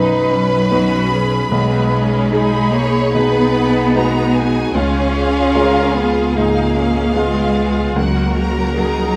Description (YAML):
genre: cinematic, emotional film score for orchestra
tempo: 74 BPM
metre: 4/4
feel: rubato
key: unclear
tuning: A4 = 444 Hz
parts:
  - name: rich studio violin section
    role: second line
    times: 0.0-9.2 s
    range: G#4 to B5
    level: -24 LUFS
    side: equal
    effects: none
  - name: felt-muted upright piano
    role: accompaniment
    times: 0.0-9.2 s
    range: B1 to B4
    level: -23 LUFS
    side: equal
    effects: none
  - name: rich studio viola section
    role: accompaniment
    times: 0.0-9.2 s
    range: A#3 to A#4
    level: -24 LUFS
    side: equal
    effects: none
  - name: mellow French horn section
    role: sustained chords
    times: 0.0-9.2 s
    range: D#4 to B4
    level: -25 LUFS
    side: equal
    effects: none
  - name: warm studio cello section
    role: bass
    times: 0.0-9.2 s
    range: F#3 to C#4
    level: -21 LUFS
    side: equal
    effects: none
  - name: warm studio double bass section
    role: bass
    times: 0.0-9.2 s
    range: B1 to C#2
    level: -24 LUFS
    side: equal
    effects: none
room: moderate scoring stage reverb, RT60 1.7 s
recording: none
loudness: -16 LUFS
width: mono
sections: 0.0-9.2 A section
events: none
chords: 0.0 B; 1.5 G#m/B; 4.7 C#; 8.0 F#add9/C#